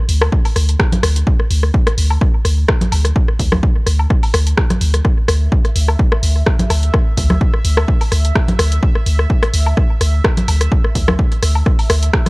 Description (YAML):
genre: minimal techno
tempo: 127 BPM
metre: 4/4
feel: swing 54% on 16ths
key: unclear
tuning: A4 = 440 Hz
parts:
  - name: punchy sub bass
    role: bass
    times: 0.1-12.1 s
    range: D2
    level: -14 LUFS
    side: equal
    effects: tube saturation, sidechain pumping
  - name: punchy analog drum machine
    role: drums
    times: 0.1-12.3 s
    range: hi-hat, rim click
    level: -22 LUFS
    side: right 1 dB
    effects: none
  - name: electronic rim click, woodblock and congas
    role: percussion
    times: 0.2-12.3 s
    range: none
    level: -19 LUFS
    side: left 1 dB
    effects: overdrive, tape echo
  - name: electronic kick drum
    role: drums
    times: 0.3-12.2 s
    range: none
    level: -15 LUFS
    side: equal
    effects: none
  - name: bubbling stepped-filter texture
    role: texture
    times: 5.4-12.3 s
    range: E5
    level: -30 LUFS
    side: right 4 dB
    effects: chorus, built-in reverb, sidechain pumping
room: little or no reverb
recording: dry, gritty hardware recording, cassette tape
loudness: -12 LUFS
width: side -24 dB against mid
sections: 0.0-12.3 A section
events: none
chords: 0.0 Dsus2